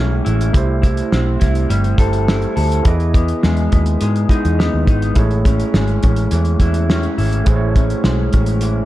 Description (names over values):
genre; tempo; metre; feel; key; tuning
indie pop, bedroom pop; 104 BPM; 4/4; straight; A lydian; A4 = 440 Hz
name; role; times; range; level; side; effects
electric guitar through a small old amp; accompaniment; 0.0-8.9 s; A2 to A4; -22 LUFS; left 3 dB; analog chorus, vibrato effect
overdriven tine electric piano; accompaniment; 0.0-8.9 s; A3 to D#5; -23 LUFS; right 4 dB; cassette tape
vintage muted picked electric bass; bass; 0.0-8.8 s; G1 to G#2; -17 LUFS; equal; none
cloth-damped thuddy drum kit; drums; 0.3-8.7 s; hi-hat, kick drum, snare drum; -16 LUFS; equal; none
room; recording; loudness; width
little or no reverb; dark, warm production; -13 LUFS; side -15 dB against mid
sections
0.0-8.9 A section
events
none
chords
0.0 Amaj7; 0.5 C6; 2.9 Emaj7; 5.2 Amaj7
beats
| 0.55 1.12 1.70 2.28 | 2.86 3.43 4.01 4.59 | 5.16 5.74 6.32 6.89 | 7.47 8.05 8.62